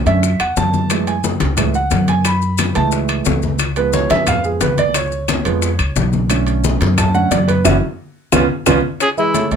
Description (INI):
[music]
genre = Afro-Cuban jazz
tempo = 178 BPM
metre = 4/4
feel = straight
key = F# minor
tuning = A4 = 440 Hz
[part]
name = warm concert grand piano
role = accompaniment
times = 0.0-9.6 s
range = D3 to B5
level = -18 LUFS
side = right 5 dB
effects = none
[part]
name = upright bass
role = bass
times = 0.1-9.6 s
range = F#1 to F#2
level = -18 LUFS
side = equal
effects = none
[part]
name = bongos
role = percussion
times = 0.1-9.6 s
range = none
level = -25 LUFS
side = left 9 dB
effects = none
[part]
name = maracas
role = percussion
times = 0.1-9.6 s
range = none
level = -27 LUFS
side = left 9 dB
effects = none
[part]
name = timbales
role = percussion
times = 0.1-9.6 s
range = none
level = -25 LUFS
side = right 4 dB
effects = none
[part]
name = congas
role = percussion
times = 0.2-9.6 s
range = none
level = -22 LUFS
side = left 5 dB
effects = none
[part]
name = claves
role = percussion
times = 0.4-9.2 s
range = none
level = -25 LUFS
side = left 8 dB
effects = none
[part]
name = warm cor anglais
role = melody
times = 9.0-9.5 s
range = E4 to G#4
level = -17 LUFS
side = right 1 dB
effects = none
[part]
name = breathy tenor saxophone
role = second line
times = 9.0-9.5 s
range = G#3 to C#4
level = -21 LUFS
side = left 9 dB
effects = none
[sound]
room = light reverb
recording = close, detailed microphones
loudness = -14 LUFS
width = side -7 dB against mid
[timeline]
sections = 0.0-9.0 A section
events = grand piano solo 0.0-9.0; drum fill 7.7-9.0; band accent 7.7-9.0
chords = 0.0 Bm9 (rootless); 0.9 F#m9; 3.6 C#7; 6.3 Bm9; 7.7 F#5; 8.3 C#7; 9.0 F#m9 (rootless)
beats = 0.23 0.57 | 0.90 1.24 1.58 1.91 | 2.25 2.59 2.92 3.26 | 3.60 3.94 4.28 4.61 | 4.95 5.29 5.63 5.96 | 6.30 6.64 6.98 7.31 | 7.65 7.99 8.33 8.66 | 9.00 9.34